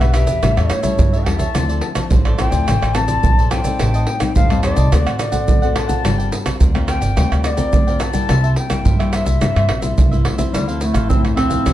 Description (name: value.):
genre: samba and choro.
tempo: 107 BPM.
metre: 4/4.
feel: straight.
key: unclear.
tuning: A4 = 439 Hz.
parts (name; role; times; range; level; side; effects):
breathy bansuri; second line; 0.0-11.7 s; Eb4 to A5; -23 LUFS; left 3 dB; none.
cavaquinho; accompaniment; 0.0-11.7 s; D4 to A5; -28 LUFS; right 4 dB; none.
nylon-string guitar; accompaniment; 0.0-11.7 s; G2 to B4; -23 LUFS; left 5 dB; none.
upright bass; bass; 0.0-11.7 s; G1 to A2; -19 LUFS; equal; none.
maracas, pandeiro, tamborim and surdo; percussion; 0.0-11.7 s; none; -18 LUFS; right 2 dB; none.
mellow clarinet; melody; 10.5-11.7 s; G3 to C4; -19 LUFS; right 2 dB; none.
room: light reverb.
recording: nothing above 10.9 kHz.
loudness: -14 LUFS.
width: side -13 dB against mid.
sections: 0.0-10.5 A section; 10.5-11.7 B section.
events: bansuri solo 0.0-10.5.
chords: 0.4 A7; 1.5 Dm9; 3.8 Am7b5; 4.9 D7; 6.0 Gm11; 8.3 C7; 10.5 Dm9.